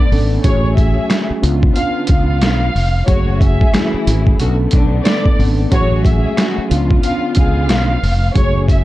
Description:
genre	hip hop, boom-bap hip-hop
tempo	91 BPM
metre	4/4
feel	swing 60% on 16ths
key	F# harmonic minor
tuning	A4 = 441 Hz
part	warm symphonic violin section	melody	0.0-8.8 s	C#5 to E#5	-22 LUFS	equal	high-pass filter, low-pass filter, analog delay
part	mellow tine electric piano	accompaniment	0.0-8.8 s	A3 to A4	-20 LUFS	equal	medium stereo tremolo, cassette tape, high-pass filter, low-pass filter
part	warm symphonic string section	sustained chords	0.0-8.8 s	D3 to G#4	-28 LUFS	left 1 dB	high-pass filter, low-pass filter
part	mellow fretless electric bass	bass	0.1-8.8 s	E#1 to C#2	-16 LUFS	equal	lush chorus
part	trip hop sampler-style drum kit	drums	0.1-8.8 s	hi-hat, kick drum, rim click, snare drum	-15 LUFS	equal	none
part	warm studio string section	stabs	3.1-7.9 s	D3 to G#4	-25 LUFS	left 1 dB	high-pass filter, low-pass filter, analog delay
room	little or no reverb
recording	dark, warm production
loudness	-12 LUFS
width	side -16 dB against mid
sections	0.0-8.8 A section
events	none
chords	0.4 F#madd9/A; 1.4 C#7b9; 3.1 F#madd9; 4.4 Bm9; 5.7 F#madd9/A; 6.7 C#7b9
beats	| 0.44 1.10 1.76 2.42 | 3.08 3.74 4.40 5.06 | 5.72 6.38 7.04 7.70 | 8.36

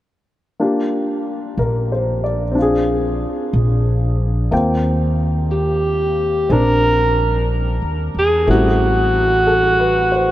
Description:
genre	jazz ballad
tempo	61 BPM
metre	4/4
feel	swing 68% on 8ths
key	Eb major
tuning	A4 = 438 Hz
part	warm upright piano	accompaniment	0.6-10.3 s	G3 to G5	-20 LUFS	left 1 dB	none
part	upright bass	bass	1.6-10.3 s	A1 to Fb2	-18 LUFS	equal	none
part	breathy alto saxophone	melody	5.5-10.3 s	Gb4 to Bb4	-16 LUFS	right 1 dB	none
room	moderate huge ambient reverb, RT60 8.4 s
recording	in a vast, echoing space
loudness	-15 LUFS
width	side -14 dB against mid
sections	0.6-4.5 A section; 4.5-10.3 B section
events	none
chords	0.6 Bb69; 2.6 Bb7; 4.5 Eb6; 8.5 Am7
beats	| 0.58 1.57 2.56 3.53 | 4.52 5.51 6.50 7.49 | 8.48 9.47

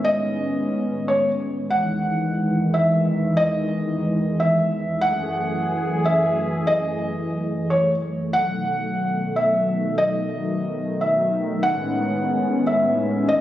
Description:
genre	hip hop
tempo	145 BPM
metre	4/4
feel	half-time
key	E major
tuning	A4 = 440 Hz
part	felt-muted upright piano	melody	0.0-13.4 s	C#5 to F#5	-22 LUFS	equal	low-pass filter, tape echo
part	warm analog pad	sustained chords	0.0-13.4 s	E2 to G#4	-22 LUFS	equal	chorus
room	light reverb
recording	recorded on a phone in the room, studio reverb, compression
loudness	-19 LUFS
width	side -13 dB against mid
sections	0.0-1.7 A section; 1.7-13.4 B section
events	none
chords	0.0 Amaj9#11; 1.7 Emaj7; 5.0 F#m9; 8.3 B7; 11.6 Amaj9#11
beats	| 0.05 0.47 0.88 1.29 | 1.71 2.12 2.54 2.95 | 3.36 3.78 4.19 4.60 | 5.02 5.43 5.84 6.26 | 6.67 7.09 7.50 7.91 | 8.33 8.74 9.16 9.57 | 9.98 10.40 10.81 11.22 | 11.64 12.05 12.47 12.88 | 13.29

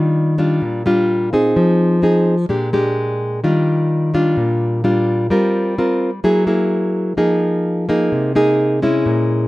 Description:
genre	bossa nova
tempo	128 BPM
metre	4/4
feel	straight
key	Eb major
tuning	A4 = 440 Hz
part	nylon-string guitar	solo	0.0-9.5 s	Bb2 to Bb4	-14 LUFS	equal	none
room	light reverb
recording	none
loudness	-14 LUFS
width	side -18 dB against mid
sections	0.0-3.4 A section; 3.4-9.5 A section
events	none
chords	0.0 Ebmaj9; 1.6 Fm7; 2.5 Bb6; 3.4 Ebmaj9; 5.3 Gm7; 6.2 Gb9; 7.2 Fm7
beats	0.15 0.62 1.09 | 1.56 2.03 2.50 2.96 | 3.43 3.90 4.37 4.84 | 5.31 5.78 6.25 6.71 | 7.18 7.65 8.12 8.59 | 9.06

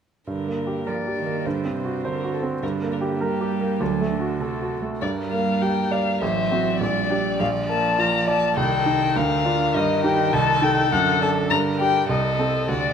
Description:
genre	quick classical-period movement for piano quartet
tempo	102 BPM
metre	2/4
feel	straight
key	G minor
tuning	A4 = 438 Hz
part	dark violin	melody	0.3-12.9 s	G4 to Bb5	-24 LUFS	left 6 dB	none
part	warm cello	second line	0.3-12.9 s	C3 to G3	-28 LUFS	right 7 dB	none
part	clear grand piano	accompaniment	0.3-12.9 s	A1 to D5	-24 LUFS	right 1 dB	none
part	rich violin	second line	5.0-12.9 s	F#4 to D5	-28 LUFS	left 1 dB	none
room	moderate scoring stage reverb, RT60 1.8 s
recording	none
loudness	-20 LUFS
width	side -7 dB against mid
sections	0.3-5.0 A section; 5.0-12.9 B section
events	none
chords	0.3 Gm; 1.5 D7/G; 2.6 Gm; 3.8 D7; 5.0 Gm; 6.2 F#dim/A; 6.8 Gm/Bb; 7.4 Bb; 8.6 Adim/C; 9.2 Bb/D; 9.7 Eb/G; 10.3 Adim/C; 10.9 D/F#; 11.5 Gm; 12.1 Adim/C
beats	| 0.27 0.86 | 1.45 2.04 | 2.62 3.21 | 3.81 4.41 | 5.02 5.62 | 6.21 6.81 | 7.40 7.98 | 8.57 9.15 | 9.74 10.33 | 10.92 11.50 | 12.09 12.69

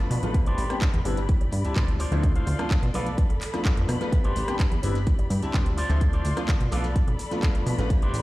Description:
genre	filtered disco house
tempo	127 BPM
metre	4/4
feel	straight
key	A minor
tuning	A4 = 440 Hz
part	bright concert grand piano	accompaniment	0.0-8.1 s	F3 to G4	-32 LUFS	left 1 dB	phaser, vintage 12-bit sampler grit, sidechain pumping, low-pass filter
part	dark symphonic string section	sustained chords	0.0-8.2 s	F4 to C6	-36 LUFS	left 2 dB	sidechain pumping, low-pass filter
part	electric guitar with an envelope filter	riff	0.1-8.2 s	F4 to F5	-35 LUFS	right 1 dB	sidechain pumping, low-pass filter
part	plucky analog bass	bass	0.1-8.2 s	G1 to B2	-26 LUFS	equal	sidechain pumping, low-pass filter
part	house drum kit	drums	0.1-8.2 s	handclaps, hi-hat, rim click	-35 LUFS	equal	sidechain pumping on hats, sidechain pumping on cymbals
part	maracas	percussion	0.1-8.2 s	none	-49 LUFS	left 3 dB	none
part	electronic kick drum	drums	0.3-8.0 s	none	-23 LUFS	equal	none
room	little or no reverb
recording	played on a big sound system in a bare room, stone room reverb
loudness	-22 LUFS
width	side -18 dB against mid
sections	0.0-8.2 A section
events	filter sweep 0.0-8.2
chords	0.3 Am11; 2.0 Dm7; 2.9 Bm7b5; 4.1 Am11 (rootless); 5.8 Dm7; 6.7 Bm7b5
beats	| 0.34 0.82 1.29 1.76 | 2.23 2.71 3.18 3.65 | 4.12 4.60 5.07 5.54 | 6.01 6.49 6.96 7.43 | 7.90

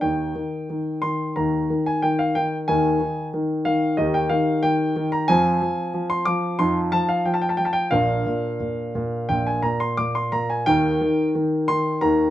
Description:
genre	classical-period piano sonatina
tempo	86-93 BPM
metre	4/4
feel	rubato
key	Eb major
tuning	A4 = 441 Hz
part	warm grand piano	solo	0.0-12.3 s	Bb1 to D6	-20 LUFS	equal	none
room	light reverb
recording	minimal, uncompressed stereo recording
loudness	-20 LUFS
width	side -13 dB against mid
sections	0.0-12.3 A section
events	none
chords	0.0 N.C.; 4.0 Eb; 5.3 Fm; 6.6 F5; 7.9 Bb; 10.7 Eb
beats	| 0.03 0.70 1.37 2.04 | 2.69 3.34 3.99 4.64 | 5.29 5.93 6.58 7.25 | 7.92 8.60 9.29 9.99 | 10.68 11.36 12.03

